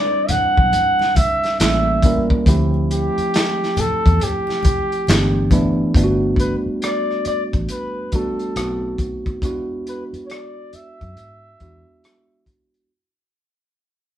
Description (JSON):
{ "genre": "R&B, neo-soul", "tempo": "69 BPM", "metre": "4/4", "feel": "swing 62% on 16ths", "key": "G major", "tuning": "A4 = 443 Hz", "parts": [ { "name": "mellow flugelhorn", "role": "melody", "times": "0.0-12.5 s", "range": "G4 to F#5", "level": "-20 LUFS", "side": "equal", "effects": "none" }, { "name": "tine electric piano", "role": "accompaniment", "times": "0.0-12.9 s", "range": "E3 to B4", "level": "-22 LUFS", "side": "right 1 dB", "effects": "none" }, { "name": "vintage muted fingered electric bass", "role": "bass", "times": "0.3-11.8 s", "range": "G1 to G#2", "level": "-21 LUFS", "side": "equal", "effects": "none" }, { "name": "crunchy breakbeat drum kit", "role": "drums", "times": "0.3-12.9 s", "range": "handclaps, hi-hat, kick drum, rim click, snare drum", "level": "-19 LUFS", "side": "equal", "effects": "none" }, { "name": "congas", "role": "percussion", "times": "0.3-5.8 s", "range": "none", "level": "-28 LUFS", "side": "left 2 dB", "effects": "none" } ], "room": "moderate studio reverb, RT60 0.8 s", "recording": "band playing live in one room", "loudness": "-16 LUFS", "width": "side -11 dB against mid", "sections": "0.0-5.9 A section; 5.9-12.9 B section", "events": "fade-out 5.9-12.9", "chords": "0.0 Am11 (rootless); 1.6 A7b9; 2.5 Dm11; 5.1 G6; 5.9 Gmaj9; 8.6 B7b9; 9.4 E7", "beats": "0.73 1.60 | 2.46 3.33 4.20 5.07 | 5.94 6.81 7.68 8.55 | 9.42 10.29 11.16 12.03" }